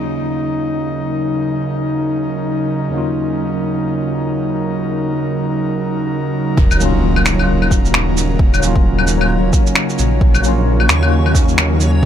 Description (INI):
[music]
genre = future garage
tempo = 132 BPM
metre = 4/4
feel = swing 60% on 16ths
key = Eb minor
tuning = A4 = 442 Hz
[part]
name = barky tine electric piano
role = accompaniment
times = 0.0-12.1 s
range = Eb2 to F4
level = -22 LUFS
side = left 3 dB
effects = medium stereo tremolo, sidechain pumping, ping-pong delay
[part]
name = airy breathy pad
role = sustained chords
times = 0.0-12.1 s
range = Db3 to Bb4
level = -19 LUFS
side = right 1 dB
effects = chorus, vintage 12-bit sampler grit, sidechain pumping
[part]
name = swelling detuned saw bass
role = bass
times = 6.6-12.1 s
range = Eb1 to Eb2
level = -16 LUFS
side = equal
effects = sidechain pumping
[part]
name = electronic kick drum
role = drums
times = 6.6-12.1 s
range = none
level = -14 LUFS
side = equal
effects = overdrive
[part]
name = impact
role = sound effects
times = 6.6-8.4 s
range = none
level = -23 LUFS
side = equal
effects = none
[part]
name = backwards swelling texture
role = texture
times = 7.8-12.1 s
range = Db4 to Db5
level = -27 LUFS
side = equal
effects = built-in reverb
[part]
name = electronic shaker, claves and finger snaps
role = drums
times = 6.7-11.9 s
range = none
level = -18 LUFS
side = left 1 dB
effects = none
[sound]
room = light reverb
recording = none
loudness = -14 LUFS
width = side -10 dB against mid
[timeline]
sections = 0.0-6.6 A section; 6.6-12.1 B section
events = impact 6.6-8.4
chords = 0.0 Ebm7